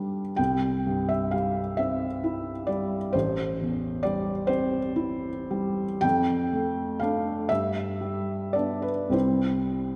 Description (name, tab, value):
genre	classical, romantic nocturne for solo piano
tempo	32-45 BPM (dotted quarters)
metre	6/8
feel	rubato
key	C major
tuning	A4 = 440 Hz
part	felt-muted upright piano	solo	0.0-10.0 s	A1 to G5	-27 LUFS	equal	none
room	wet concert hall reverb, RT60 2.1 s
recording	none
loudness	-27 LUFS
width	mono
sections	0.0-10.0 A section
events	none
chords	0.4 C; 3.1 Am7; 6.0 Dm/F; 7.5 G; 9.1 C